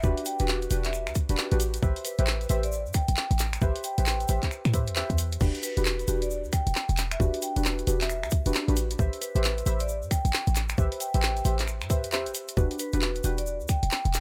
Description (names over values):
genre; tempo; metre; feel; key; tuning
UK garage, two-step garage; 134 BPM; 4/4; swing 62% on 16ths; E minor; A4 = 440 Hz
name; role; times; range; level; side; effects
vibraphone with medium mallets; melody; 0.0-14.1 s; B4 to G5; -37 LUFS; equal; tape echo
deep mellow chord stab; stabs; 0.0-13.4 s; D4 to E5; -35 LUFS; equal; chorus, tape echo
short 808-style bass; bass; 0.0-14.2 s; E1 to A2; -30 LUFS; equal; none
electronic kick drum; drums; 0.0-13.8 s; none; -29 LUFS; equal; none
egg shaker; percussion; 0.0-14.2 s; none; -42 LUFS; equal; none
garage drum kit; drums; 0.2-14.2 s; crash cymbal, finger snaps, handclaps, hi-hat; -34 LUFS; equal; none
room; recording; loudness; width
little or no reverb; none; -27 LUFS; mono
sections
0.0-14.2 A section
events
none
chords
0.0 Em9; 1.6 Am9; 5.4 Em9; 8.8 Am9; 12.6 Em9